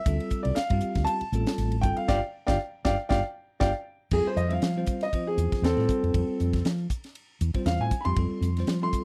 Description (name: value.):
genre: electric jazz fusion.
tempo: 118 BPM.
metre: 4/4.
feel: swing 55% on 16ths.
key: F major.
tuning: A4 = 438 Hz.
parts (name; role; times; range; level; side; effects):
warm grand piano; melody; 0.0-9.0 s; C4 to C6; -31 LUFS; equal; slapback echo.
bell-like tine electric piano; accompaniment; 0.1-9.0 s; F3 to C5; -35 LUFS; equal; none.
woody fretless electric bass; bass; 0.1-8.9 s; G1 to F3; -30 LUFS; equal; none.
crisp fusion drum kit; drums; 0.1-9.0 s; crash cymbal, hi-hat, kick drum, ride cymbal, snare drum; -31 LUFS; equal; none.
room: little or no reverb.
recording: dry, close 1970s-style studio recording.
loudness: -27 LUFS.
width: mono.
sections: 0.0-4.1 A section; 4.1-9.0 B section.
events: band accent 2.1-4.1; drum fill 3.9; grand piano solo 4.1-9.0.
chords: 0.1 Dm7; 1.8 G7(no3); 4.1 Fadd9.